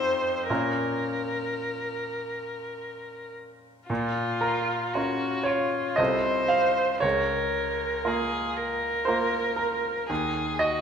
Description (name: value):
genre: classical, romantic duo for violin and grand piano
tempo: 52-60 BPM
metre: 3/4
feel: rubato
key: Bb minor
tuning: A4 = 440 Hz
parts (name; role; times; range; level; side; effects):
- warm violin; melody; 0.0-10.8 s; F4 to C5; -28 LUFS; left 1 dB; none
- bright grand piano; accompaniment; 0.0-10.8 s; C2 to F5; -27 LUFS; right 1 dB; none
room: moderate concert hall reverb, RT60 2.1 s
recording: minimal, uncompressed stereo recording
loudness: -24 LUFS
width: side -7 dB against mid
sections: 0.0-3.9 A section; 3.9-10.8 B section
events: none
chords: 0.5 Bbm; 6.0 F7/C; 7.0 Bbm/Db; 10.1 Ebm